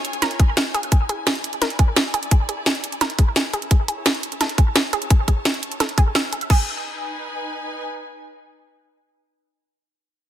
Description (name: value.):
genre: dark technical drum and bass.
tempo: 172 BPM.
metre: 4/4.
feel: straight.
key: unclear.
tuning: A4 = 437 Hz.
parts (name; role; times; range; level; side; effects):
drum and bass drum kit; drums; 0.0-6.6 s; crash cymbal, hi-hat, snare drum; -21 LUFS; equal; overdrive.
rich studio string section; texture; 0.0-7.9 s; D#4 to A5; -33 LUFS; left 1 dB; sidechain pumping.
analog pluck; arpeggios; 0.2-6.7 s; G#4 to E#5; -26 LUFS; right 3 dB; chorus, sidechain pumping, digital delay.
electronic kick drum; drums; 0.4-6.6 s; none; -15 LUFS; equal; overdrive.
room: digital ambience.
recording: dense, heavily limited modern master.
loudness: -18 LUFS.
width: side -11 dB against mid.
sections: 0.0-6.5 A section; 6.5-7.9 B section.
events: fade-out on string section 0.0-6.5; filter sweep on synth arpeggio sound 0.0-6.5.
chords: 0.0 N.C.; 0.9 E7; 3.7 A; 6.5 G#m.